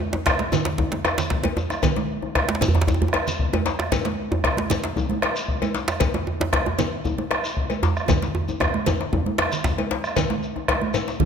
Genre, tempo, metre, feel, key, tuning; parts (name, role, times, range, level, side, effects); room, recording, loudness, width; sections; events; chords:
west african traditional, West African drum ensemble; 115 BPM; 4/4; straight
djembe; percussion; 0.0-11.3 s; -28 LUFS; left 6 dB
djembe; percussion; 0.0-9.8 s; -25 LUFS; right 3 dB
congas; percussion; 0.1-11.3 s; -28 LUFS; right 7 dB
bombo; percussion; 0.3-11.3 s; -25 LUFS; equal
cowbell; percussion; 0.3-11.1 s; -30 LUFS; left 7 dB
shekere; percussion; 0.3-11.1 s; -33 LUFS; left 3 dB
moderate concert hall reverb, RT60 1.7 s; close, detailed microphones; -20 LUFS; side -7 dB against mid
0.0-10.2 A section; 10.2-11.3 B section
drum fill 1.4-1.8, 8.1-10.2